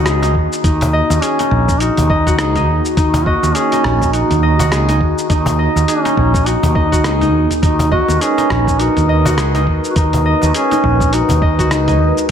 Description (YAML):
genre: organic downtempo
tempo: 103 BPM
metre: 4/4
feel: swing 58% on 16ths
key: Eb minor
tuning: A4 = 439 Hz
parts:
  - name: mellow duduk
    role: melody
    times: 0.0-12.1 s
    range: Db4 to Gb4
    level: -17 LUFS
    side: left 1 dB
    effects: ping-pong delay
  - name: warbly tape-like pad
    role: sustained chords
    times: 0.0-12.3 s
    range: Eb3 to Cb5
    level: -21 LUFS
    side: right 2 dB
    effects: chorus, built-in reverb, sidechain pumping
  - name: Celtic harp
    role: arpeggios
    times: 0.0-12.3 s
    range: Eb4 to Eb5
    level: -20 LUFS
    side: equal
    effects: analog delay
  - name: fretless electric bass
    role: bass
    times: 0.0-12.1 s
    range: Bb1 to Eb2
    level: -16 LUFS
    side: equal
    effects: tube saturation, sidechain pumping
  - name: dusty soul sampler-style drum kit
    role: drums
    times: 0.1-12.3 s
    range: cabasa, hi-hat, rim click, toms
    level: -23 LUFS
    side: equal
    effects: none
  - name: cajon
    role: percussion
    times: 0.2-11.4 s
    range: none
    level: -24 LUFS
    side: left 1 dB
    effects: none
  - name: electronic kick drum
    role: drums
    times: 0.3-11.7 s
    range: none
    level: -17 LUFS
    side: equal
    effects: none
room: moderate plate reverb, RT60 1.7 s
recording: dreamy mix soaked in reverb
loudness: -12 LUFS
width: side -8 dB against mid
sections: 0.0-12.3 A section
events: none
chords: 0.0 Ebm; 7.6 Abm7